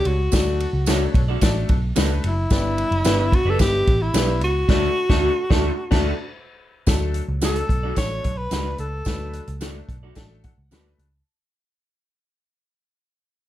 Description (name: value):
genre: uptempo 1960s-style soul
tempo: 110 BPM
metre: 4/4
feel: straight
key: D major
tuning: A4 = 440 Hz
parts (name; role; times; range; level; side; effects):
- breathy tenor saxophone; melody; 0.0-9.6 s; E4 to C#5; -24 LUFS; equal; plate reverb
- clear upright piano; accompaniment; 0.0-11.2 s; G2 to A5; -28 LUFS; left 4 dB; none
- vintage muted picked electric bass; bass; 0.1-11.2 s; F#1 to D2; -24 LUFS; equal; none
- vintage drum kit; drums; 0.1-11.1 s; crash cymbal, hi-hat, kick drum, ride cymbal, snare drum; -21 LUFS; equal; none
- tambourine; percussion; 0.3-10.8 s; none; -35 LUFS; right 6 dB; none
- electric guitar through a small old amp; stabs; 0.9-10.9 s; D4 to D5; -28 LUFS; right 2 dB; none
room: light reverb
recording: none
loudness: -18 LUFS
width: side -13 dB against mid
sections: 0.0-6.9 A section; 6.9-11.3 B section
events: band accent 4.7-6.9; fade-out 6.9-11.3; upright piano fill 10.2-11.3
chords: 0.0 D; 2.5 G; 4.7 D